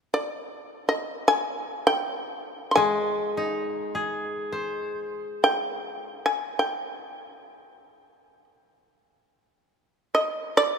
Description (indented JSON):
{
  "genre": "japanese traditional, Japanese chamber music",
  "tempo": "free time",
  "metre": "none",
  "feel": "none",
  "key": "unclear",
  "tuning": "A4 = 442 Hz",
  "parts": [
    { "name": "shamisen", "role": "melody", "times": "0.1-10.8 s", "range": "D5 to C6", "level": "-24 LUFS", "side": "equal", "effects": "none" },
    { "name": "koto", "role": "accompaniment", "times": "2.8-6.8 s", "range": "Ab3 to C5", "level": "-28 LUFS", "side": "left 2 dB", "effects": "none" }
  ],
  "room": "moderate church reverb, RT60 3.5 s",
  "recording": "minimal, uncompressed stereo recording",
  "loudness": "-24 LUFS",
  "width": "side -6 dB against mid",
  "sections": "0.0-10.8 A section",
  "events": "none",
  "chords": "none",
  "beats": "free time"
}